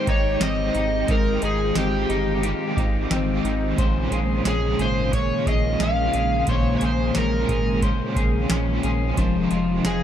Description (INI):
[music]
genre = dream pop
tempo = 89 BPM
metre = 4/4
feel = straight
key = unclear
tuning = A4 = 440 Hz
[part]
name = overdriven slide guitar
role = melody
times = 0.0-10.0 s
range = G4 to F5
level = -26 LUFS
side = equal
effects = digital delay
[part]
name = crunchy overdriven guitar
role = accompaniment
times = 0.0-10.0 s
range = F2 to G4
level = -30 LUFS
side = right 5 dB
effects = tremolo, analog chorus
[part]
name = string machine, full ensemble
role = sustained chords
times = 0.0-10.0 s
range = C3 to G5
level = -27 LUFS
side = equal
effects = ensemble chorus
[part]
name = electric guitar at the edge of break-up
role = arpeggios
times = 0.0-10.0 s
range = Bb2 to C5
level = -26 LUFS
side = left 4 dB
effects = lush chorus, digital delay
[part]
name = warm sub bass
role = bass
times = 0.1-10.0 s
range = F1 to Bb1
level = -26 LUFS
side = right 1 dB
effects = none
[part]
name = booming analog drum machine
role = drums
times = 0.1-10.0 s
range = hi-hat, kick drum, snare drum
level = -24 LUFS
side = right 1 dB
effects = none
[sound]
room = light reverb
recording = dark, warm production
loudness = -19 LUFS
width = side -10 dB against mid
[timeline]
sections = 0.0-10.0 A section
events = none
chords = 0.0 Abmaj7; 3.8 Bbm9; 9.2 Fm7